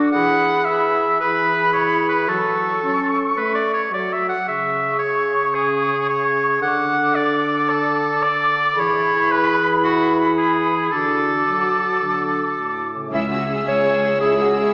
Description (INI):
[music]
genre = cinematic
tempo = 111 BPM (dotted quarters)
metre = 12/8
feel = straight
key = unclear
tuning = A4 = 440 Hz
[part]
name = bright concert flute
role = second line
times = 0.0-12.9 s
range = B5 to D6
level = -22 LUFS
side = equal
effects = none
[part]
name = bright oboe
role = second line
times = 0.0-12.9 s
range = F#4 to F#5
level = -19 LUFS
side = equal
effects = none
[part]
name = warm clarinet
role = second line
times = 0.0-14.7 s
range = F#4 to E5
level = -23 LUFS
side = equal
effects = none
[part]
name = mellow French horn section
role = sustained chords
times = 0.0-13.1 s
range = A2 to C#4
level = -24 LUFS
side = equal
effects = none
[part]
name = concert harp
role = arpeggios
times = 12.9-14.7 s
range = C#3 to E5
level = -34 LUFS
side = equal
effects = none
[part]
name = rich studio violin section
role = melody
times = 13.1-14.7 s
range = E6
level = -29 LUFS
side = equal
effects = none
[part]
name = warm symphonic violin section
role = second line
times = 13.1-14.7 s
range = E4 to G#4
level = -26 LUFS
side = equal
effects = none
[part]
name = rich symphonic viola section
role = accompaniment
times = 13.1-14.7 s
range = C#4 to G#4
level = -26 LUFS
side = equal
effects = none
[part]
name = dark symphonic cello section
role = bass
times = 13.1-14.7 s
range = C#2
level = -26 LUFS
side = equal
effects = none
[part]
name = rich symphonic double bass section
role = bass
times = 13.1-13.5 s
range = C#2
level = -32 LUFS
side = equal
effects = none
[sound]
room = wet scoring stage reverb, RT60 1.8 s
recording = heard from further back in the room, small speaker sound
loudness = -16 LUFS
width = side -32 dB against mid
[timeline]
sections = 0.0-13.1 A section; 13.1-14.7 A section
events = none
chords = 0.1 E; 2.3 F#m; 4.5 C#m; 6.6 D; 8.8 E; 10.9 D; 13.1 C#m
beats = | 0.13 0.66 1.20 1.74 | 2.28 2.83 3.38 3.92 | 4.47 5.01 5.55 6.09 | 6.63 7.16 7.70 8.23 | 8.77 9.30 9.84 10.38 | 10.92 11.47 12.02 12.57 | 13.12 13.67 14.21